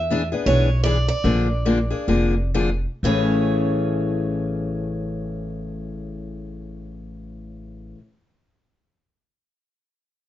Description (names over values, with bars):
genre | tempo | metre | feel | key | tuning
acoustic string swing (jazz manouche) | 116-165 BPM | 4/4 | swing 60% on 8ths | A major | A4 = 439 Hz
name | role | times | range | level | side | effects
picked steel-string acoustic guitar | melody | 0.0-7.9 s | C#5 to E5 | -27 LUFS | right 4 dB | none
upright bass | bass | 0.0-7.9 s | F1 to E2 | -25 LUFS | equal | none
picked steel-string acoustic guitar | accompaniment | 0.1-8.0 s | A2 to G#4 | -23 LUFS | left 3 dB | none
room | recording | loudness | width
moderate studio reverb, RT60 0.5 s | nothing above 7.6 kHz | -19 LUFS | side -12 dB against mid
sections
0.0-3.0 A section; 3.0-7.2 B section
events
slowing down 0.0-3.0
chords
0.0 E7; 1.2 Bb7; 3.0 Amaj7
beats
0.09 0.46 0.84 | 1.23 1.64 2.08 2.54 | 3.03 3.55 4.06 4.58 | 5.09 5.61 6.12 6.64